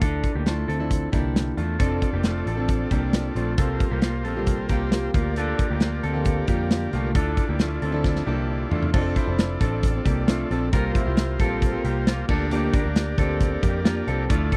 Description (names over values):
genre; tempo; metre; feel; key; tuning
jangly indie pop; 134 BPM; 4/4; straight; F major; A4 = 440 Hz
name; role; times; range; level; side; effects
fingerpicked plugged-in steel-string acoustic guitar; accompaniment; 0.0-14.6 s; C3 to A4; -32 LUFS; equal; none
electric guitar through a small old amp; arpeggios; 0.0-14.6 s; A3 to C5; -31 LUFS; equal; spring reverb, tape echo
vintage muted picked electric bass; bass; 0.0-14.5 s; F1 to F2; -29 LUFS; equal; none
modern studio drum kit; drums; 0.0-14.6 s; crash cymbal, hi-hat, kick drum, snare drum, toms; -26 LUFS; equal; none
combo organ; accompaniment; 1.8-14.6 s; E4 to D5; -35 LUFS; equal; none
room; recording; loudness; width
little or no reverb; dry, close 1970s-style studio recording; -23 LUFS; mono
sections
0.0-8.9 A section; 8.9-14.6 B section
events
drum fill 8.0-8.9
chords
0.0 Dmadd9; 1.8 F6; 3.6 C7sus4; 5.1 Bb6/D; 7.2 Dmadd9; 8.9 F6; 10.7 C7sus4; 12.3 Bb6/D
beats
| 0.01 0.46 0.91 1.35 | 1.80 2.25 2.69 3.14 | 3.58 4.03 4.48 4.92 | 5.37 5.82 6.26 6.71 | 7.15 7.60 8.05 8.49 | 8.94 9.39 9.83 10.28 | 10.72 11.17 11.62 12.06 | 12.51 12.96 13.40 13.85 | 14.29